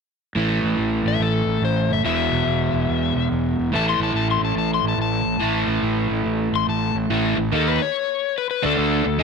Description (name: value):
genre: rock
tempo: 142 BPM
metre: 4/4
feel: swing 65% on 8ths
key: unclear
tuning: A4 = 440 Hz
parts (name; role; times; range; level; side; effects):
- crunchy overdriven guitar; riff; 0.4-9.2 s; E2 to D#4; -21 LUFS; right 1 dB; none
- fuzz fingered electric bass; bass; 0.4-9.2 s; E1 to D#2; -25 LUFS; right 2 dB; overdrive
- overdriven slide guitar; melody; 1.1-9.2 s; A4 to C6; -24 LUFS; left 12 dB; none
room: little or no reverb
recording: none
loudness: -19 LUFS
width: side -5 dB against mid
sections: 0.4-7.1 A section; 7.1-9.2 B section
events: none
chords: 0.4 A5; 2.0 E5; 3.7 A5; 7.1 A